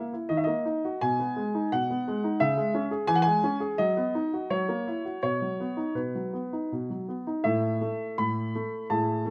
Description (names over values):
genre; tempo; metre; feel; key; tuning
classical-period piano sonatina; 80-88 BPM; 3/4; rubato; B major; A4 = 445 Hz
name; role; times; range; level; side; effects
warm baby grand piano; solo; 0.0-9.3 s; A2 to B5; -28 LUFS; equal; none
room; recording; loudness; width
light reverb; close, detailed microphones; -28 LUFS; mono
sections
0.0-7.4 A section; 7.4-9.3 B section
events
none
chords
0.3 D#m; 1.0 G#m/B; 2.4 C#m; 3.1 C#m/E; 3.8 B/F#; 4.5 F#7; 5.2 B; 7.4 A5